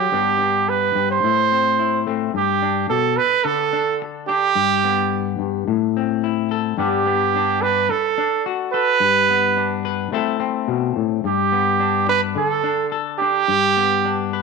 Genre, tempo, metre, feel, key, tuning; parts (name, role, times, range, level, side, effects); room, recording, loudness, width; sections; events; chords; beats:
highlife; 108 BPM; 4/4; swing 55% on 16ths; G major; A4 = 442 Hz
warm trumpet; melody; 0.0-14.3 s; G4 to C5; -18 LUFS; right 8 dB
semi-hollow electric guitar; accompaniment; 0.0-14.4 s; G2 to B4; -22 LUFS; left 13 dB
moderate echo chamber reverb, RT60 1.5 s, studio reverb; 1960s-style stereo with parts hard left and right; -17 LUFS; side -4 dB against mid
0.0-2.3 A section; 2.3-14.4 B section
0.1 G; 1.2 Am; 2.3 G; 3.4 D5; 4.6 G; 5.7 Am; 6.8 G; 7.9 D; 9.0 G; 10.1 Am; 11.2 G; 12.4 D5; 13.5 G
| 0.11 0.67 1.23 1.78 | 2.34 2.89 3.45 4.00 | 4.56 5.12 5.67 6.23 | 6.78 7.34 7.90 8.45 | 9.01 9.57 10.13 10.69 | 11.24 11.80 12.36 12.92 | 13.48 14.04